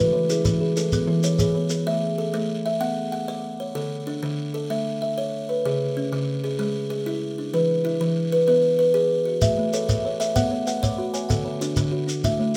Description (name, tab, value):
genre	southern african traditional, mbira-style interlocking cycle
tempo	127 BPM (dotted quarters)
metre	12/8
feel	straight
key	A major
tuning	A4 = 441 Hz
part	buzzing kalimba	arpeggios	0.0-12.6 s	C#3 to F#5	-25 LUFS	equal	none
part	kalimba	arpeggios	0.0-2.2, 9.6-12.6 s	D3 to G#5	-29 LUFS	equal	none
part	shekere	percussion	0.3-1.8, 9.4-12.6 s	none	-28 LUFS	equal	none
room	moderate studio reverb, RT60 0.7 s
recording	none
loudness	-24 LUFS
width	mono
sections	0.0-1.9 A section; 1.9-12.6 B section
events	none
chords	0.0 E; 1.9 A5; 2.8 Bm; 3.8 D5; 4.7 A; 5.6 C#m; 7.5 E; 9.4 A; 10.4 Bm; 11.3 D